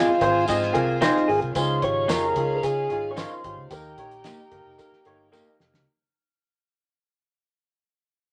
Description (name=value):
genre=uptempo 1960s-style soul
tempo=111 BPM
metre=4/4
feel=straight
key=unclear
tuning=A4 = 436 Hz
part: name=percussive tonewheel organ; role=melody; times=0.0-5.3 s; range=Eb4 to Db5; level=-27 LUFS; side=equal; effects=slow rotary speaker
part: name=warm studio string section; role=second line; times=0.0-5.8 s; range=Db4 to Ab5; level=-35 LUFS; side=equal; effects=none
part: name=warm upright piano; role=accompaniment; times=0.0-5.8 s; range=Ab2 to Eb5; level=-28 LUFS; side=equal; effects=tube saturation
part: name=electric guitar through a small old amp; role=stabs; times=0.0-5.5 s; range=Bb3 to Db5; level=-31 LUFS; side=equal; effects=none
part: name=vintage muted fingered electric bass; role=bass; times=0.1-5.8 s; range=F1 to Db3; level=-35 LUFS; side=equal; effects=none
part: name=cloth-damped thuddy drum kit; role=drums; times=0.2-5.9 s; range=hi-hat, kick drum, snare drum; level=-35 LUFS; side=equal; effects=none
part: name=tambourine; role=percussion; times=0.5-5.5 s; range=none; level=-42 LUFS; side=equal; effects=none
room=moderate studio ambience, RT60 0.5 s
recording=none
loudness=-23 LUFS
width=mono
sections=0.0-5.9 A section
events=fade-out 0.0-5.9; drum fill 5.3-5.9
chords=0.0 Fm/Ab; 1.6 Dbadd9; 3.7 Eb